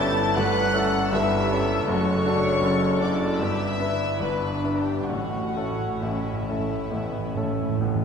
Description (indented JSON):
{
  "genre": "classical, romantic movement for piano and orchestra",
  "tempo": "64-80 BPM",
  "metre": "4/4",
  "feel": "rubato",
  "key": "unclear",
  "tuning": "A4 = 440 Hz",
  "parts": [
    { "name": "clear baby grand piano", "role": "melody", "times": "0.0-8.0 s", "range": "F#1 to B4", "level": "-25 LUFS", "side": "left 1 dB", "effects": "none" },
    { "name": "warm studio violin section", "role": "melody", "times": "0.0-7.8 s", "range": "E5 to A6", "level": "-32 LUFS", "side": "left 2 dB", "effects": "none" },
    { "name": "clear studio violin section", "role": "second line", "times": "0.0-7.8 s", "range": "E4 to A5", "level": "-30 LUFS", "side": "left 3 dB", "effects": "none" },
    { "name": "warm studio viola section", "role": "accompaniment", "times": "0.0-8.0 s", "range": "A3 to A4", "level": "-31 LUFS", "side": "right 2 dB", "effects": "none" },
    { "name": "dark studio double bass section", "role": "bass", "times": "0.0-8.0 s", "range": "F#1 to A1", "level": "-33 LUFS", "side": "right 3 dB", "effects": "none" },
    { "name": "warm studio cello section", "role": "bass", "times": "0.0-8.0 s", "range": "C#4 to B4", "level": "-32 LUFS", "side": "right 1 dB", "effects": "none" },
    { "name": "timpani", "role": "percussion", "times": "5.1-8.0 s", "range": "A2", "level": "-29 LUFS", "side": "right 4 dB", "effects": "none" }
  ],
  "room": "wet scoring stage reverb, RT60 1.9 s",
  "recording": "heard from further back in the room",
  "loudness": "-22 LUFS",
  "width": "side -6 dB against mid",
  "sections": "0.0-8.0 A section",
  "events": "timpani fill 5.1-8.0",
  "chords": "0.0 A7/G; 1.9 D/F#; 3.4 Em7/G; 5.1 A"
}